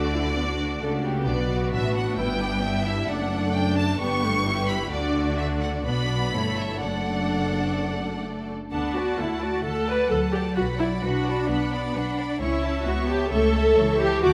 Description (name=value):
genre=quick classical-period movement for string orchestra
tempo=131 BPM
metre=4/4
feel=straight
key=D major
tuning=A4 = 440 Hz
part: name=clear symphonic violin section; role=melody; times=0.0-14.3 s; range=D5 to D6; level=-34 LUFS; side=equal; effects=none
part: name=warm studio violin section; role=second line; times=0.0-14.3 s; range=D4 to B5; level=-34 LUFS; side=equal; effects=none
part: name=rich symphonic viola section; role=accompaniment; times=0.0-14.3 s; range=G3 to B4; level=-28 LUFS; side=equal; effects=none
part: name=rich studio cello section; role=bass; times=0.0-14.3 s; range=F#2 to F#4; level=-32 LUFS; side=equal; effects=none
part: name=rich symphonic double bass section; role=bass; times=0.0-14.3 s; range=F#1 to D2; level=-31 LUFS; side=equal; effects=none
room=moderate scoring stage reverb, RT60 1.7 s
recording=none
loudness=-25 LUFS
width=mono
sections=0.0-8.7 A section; 8.7-14.3 A section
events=none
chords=0.0 D; 1.3 Bm; 2.2 G; 3.1 D/F#; 4.0 G; 4.9 D; 5.9 Bm; 6.3 A7/G; 6.8 D/F#; 8.7 D; 10.6 Bm; 12.4 A/C#